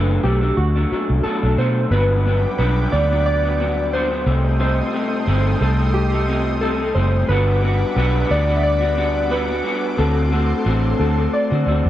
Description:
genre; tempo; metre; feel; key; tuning
indie pop; 89 BPM; 4/4; swing 55% on 16ths; G major; A4 = 439 Hz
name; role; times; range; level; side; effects
warbly lo-fi synth keys; melody; 0.0-11.9 s; F#4 to E5; -23 LUFS; equal; lush chorus, tape echo
electric guitar through a small old amp; accompaniment; 0.0-11.9 s; G2 to F#4; -22 LUFS; left 2 dB; wide subtle chorus, vibrato effect
vintage muted fingered electric bass; bass; 0.0-11.9 s; F#1 to D3; -19 LUFS; equal; none
lush unison pad; sustained chords; 1.9-11.9 s; G3 to Eb6; -30 LUFS; right 1 dB; chorus
room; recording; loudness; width
little or no reverb; faint mains hum; -16 LUFS; side -13 dB against mid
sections
0.0-11.9 A section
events
none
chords
0.0 Bm7; 1.9 Gmaj7; 4.3 Cm6; 7.3 Gmaj7; 10.0 D7

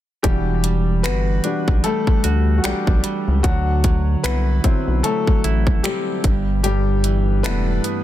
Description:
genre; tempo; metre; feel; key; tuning
contemporary R&B; 75 BPM; 4/4; swing 58% on 16ths; E minor; A4 = 440 Hz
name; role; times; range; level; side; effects
clear grand piano; accompaniment; 0.2-8.0 s; F#3 to B4; -23 LUFS; left 6 dB; none
semi-hollow electric guitar; arpeggios; 0.2-8.0 s; G2 to F#4; -24 LUFS; right 7 dB; ping-pong delay
rubbery square bass; bass; 0.2-7.8 s; E1 to D2; -19 LUFS; equal; none
trap drum kit; drums; 0.2-8.0 s; finger snaps, hi-hat, kick drum; -20 LUFS; equal; soft clipping on snare
room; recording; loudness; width
little or no reverb; dense, heavily limited modern master; -16 LUFS; side -13 dB against mid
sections
0.2-8.0 A section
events
grand piano solo 0.2-8.0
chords
0.2 Em9; 3.4 D9; 6.2 G6

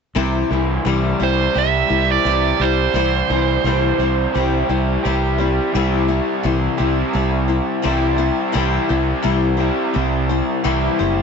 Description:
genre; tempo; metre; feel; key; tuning
rock; 86 BPM; 4/4; straight; C major; A4 = 440 Hz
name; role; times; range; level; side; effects
picked old ladder-braced acoustic guitar; accompaniment; 0.1-11.2 s; C3 to C5; -21 LUFS; left 9 dB; none
raw garage guitar; riff; 0.2-11.2 s; C3 to G4; -21 LUFS; right 2 dB; overdrive
modern bright fingered electric bass; bass; 0.2-11.2 s; F#1 to C2; -20 LUFS; equal; none
nasal lead guitar with a parked wah; melody; 1.2-4.7 s; C5 to E5; -20 LUFS; right 10 dB; overdrive, tape echo
room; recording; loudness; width
light reverb, digital ambience; 1960s-style stereo with parts hard left and right, nothing above 7.9 kHz; -16 LUFS; side -6 dB against mid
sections
0.2-5.7 A section; 5.7-11.2 B section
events
none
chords
0.2 C

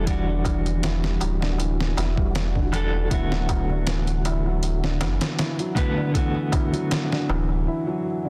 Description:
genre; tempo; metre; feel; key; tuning
trip hop; 79 BPM; 4/4; swing 54% on 16ths; E minor; A4 = 439 Hz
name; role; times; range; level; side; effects
mellow electric guitar; accompaniment; 0.0-7.7 s; D3 to B4; -31 LUFS; equal; tremolo, tape echo
felt-muted upright piano; arpeggios; 0.0-8.3 s; D3 to E4; -31 LUFS; equal; vintage 12-bit sampler grit, tape echo
warm sub bass; bass; 0.0-7.7 s; D1 to F#1; -27 LUFS; equal; none
flickering grainy texture; texture; 0.9-7.7 s; F#4; -43 LUFS; equal; none
trip hop sampler-style drum kit; drums; 0.1-7.3 s; hi-hat, kick drum, snare drum; -28 LUFS; equal; studio ambience
darbuka; percussion; 0.1-7.6 s; none; -39 LUFS; equal; none
room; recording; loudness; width
digital ambience; dense, heavily limited modern master; -24 LUFS; mono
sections
0.0-8.3 A section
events
none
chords
0.0 Em9; 3.1 Bm7/D

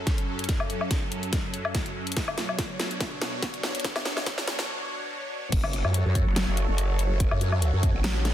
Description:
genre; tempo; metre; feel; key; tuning
heavy wobble dubstep; 143 BPM; 4/4; swing 54% on 16ths, half-time; F# minor; A4 = 440 Hz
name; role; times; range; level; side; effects
supersaw pad; sustained chords; 0.0-8.3 s; F#2 to C#5; -33 LUFS; equal; phaser, sidechain pumping
dubstep drum kit; drums; 0.1-8.3 s; crash cymbal, hi-hat, snare drum, woodblock; -30 LUFS; left 1 dB; high-pass filter on snare, high-pass filter on toms, high-pass filter on hats, high-pass filter on perc, high-pass filter on cymbals, high-pass filter on room
electronic kick drum; drums; 0.1-7.9 s; none; -27 LUFS; equal; none
growl bass; bass; 5.5-8.3 s; F#1 to F#2; -24 LUFS; equal; chorus, overdrive
room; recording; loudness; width
light reverb, digital ambience; dense, heavily limited modern master, high-pass filter; -25 LUFS; side -12 dB against mid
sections
0.0-5.5 A section; 5.5-8.3 B section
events
build-up 0.0-5.5; drum fill 0.0-4.7; filter sweep 0.0-5.5; break 4.7-5.5; drop 5.5-8.3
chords
0.0 F#m; 2.2 Bmadd9; 5.5 F#m

